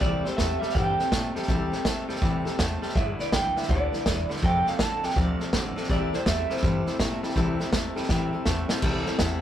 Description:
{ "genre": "rockabilly", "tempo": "163 BPM", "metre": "4/4", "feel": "swing 64% on 8ths", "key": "C major", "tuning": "A4 = 440 Hz", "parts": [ { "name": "electric guitar through a small old amp", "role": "melody", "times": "0.0-8.4 s", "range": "C5 to A5", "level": "-29 LUFS", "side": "right 2 dB", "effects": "none" }, { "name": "picked steel-string acoustic guitar", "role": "accompaniment", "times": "0.0-9.4 s", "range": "C3 to D5", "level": "-30 LUFS", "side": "left 3 dB", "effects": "none" }, { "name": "twangy electric guitar", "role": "riff", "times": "0.0-9.4 s", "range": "F2 to A3", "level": "-34 LUFS", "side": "right 4 dB", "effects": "none" }, { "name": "upright bass", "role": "bass", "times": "0.0-9.4 s", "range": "E1 to Bb2", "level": "-32 LUFS", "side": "equal", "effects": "none" }, { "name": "vintage drum kit", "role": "drums", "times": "0.0-9.3 s", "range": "crash cymbal, hi-hat, kick drum, snare drum", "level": "-27 LUFS", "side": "equal", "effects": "none" } ], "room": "moderate studio reverb, RT60 0.6 s", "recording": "rough rehearsal-room recording", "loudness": "-23 LUFS", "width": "side -11 dB against mid", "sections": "0.0-8.8 A section", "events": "drum fill 8.1-8.8", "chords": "0.0 C6; 3.0 G6; 4.4 F6; 5.9 C6", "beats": "| 0.01 0.38 0.75 1.12 | 1.49 1.85 2.22 2.59 | 2.96 3.33 3.69 4.06 | 4.43 4.79 5.16 5.53 | 5.89 6.26 6.63 7.00 | 7.36 7.73 8.10 8.46 | 8.83 9.20" }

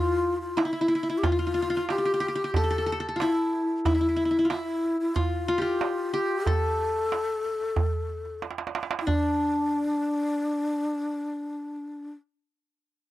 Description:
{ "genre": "Arabic maqam ensemble", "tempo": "92 BPM", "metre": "4/4", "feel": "straight", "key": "unclear", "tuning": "A4 = 440 Hz", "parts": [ { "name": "qanun", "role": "melody", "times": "0.0-12.1 s", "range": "D4 to A4", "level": "-27 LUFS", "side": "left 1 dB", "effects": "none" }, { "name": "breathy low ney", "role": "second line", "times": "0.0-12.1 s", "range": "D4 to A4", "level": "-28 LUFS", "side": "left 2 dB", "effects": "none" }, { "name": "darbuka", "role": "percussion", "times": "0.6-9.4 s", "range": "none", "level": "-29 LUFS", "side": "right 2 dB", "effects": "none" } ], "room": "little or no reverb", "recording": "dry, close 1970s-style studio recording", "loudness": "-24 LUFS", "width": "side -15 dB against mid", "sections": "0.0-9.1 A section; 9.1-11.7 B section", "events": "drum fill 8.4-9.1", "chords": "none", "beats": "0.58 | 1.24 1.89 2.55 3.20 | 3.85 4.51 5.16 5.81 | 6.47 7.12 7.77 8.42 | 9.07 9.73 10.38 11.03" }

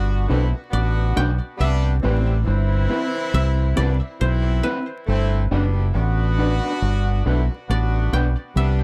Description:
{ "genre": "reggae", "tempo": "69 BPM", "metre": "4/4", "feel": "swing 57% on 16ths", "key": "G major", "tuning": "A4 = 439 Hz", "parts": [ { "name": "koto", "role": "melody", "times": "0.0-8.8 s", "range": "B4 to G5", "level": "-33 LUFS", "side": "equal", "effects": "tape echo" }, { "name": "warm horn section", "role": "second line", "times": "0.0-8.8 s", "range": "E3 to F#4", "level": "-29 LUFS", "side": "equal", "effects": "tape echo" }, { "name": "deep dub fingered electric bass", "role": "bass", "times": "0.0-8.8 s", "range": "F#1 to C2", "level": "-21 LUFS", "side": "equal", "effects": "none" }, { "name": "electric guitar at the edge of break-up", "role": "accompaniment", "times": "0.3-8.3 s", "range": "C4 to B4", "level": "-30 LUFS", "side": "equal", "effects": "tremolo, tape echo" } ], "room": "little or no reverb", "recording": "dry, close 1970s-style studio recording, vinyl crackle", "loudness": "-21 LUFS", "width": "mono", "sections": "0.0-8.8 A section", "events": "none", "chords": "0.0 Gmaj7; 1.6 Cmaj7; 5.1 Gmaj7", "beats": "0.72 | 1.59 2.46 3.33 4.20 | 5.07 5.94 6.81 7.68 | 8.55" }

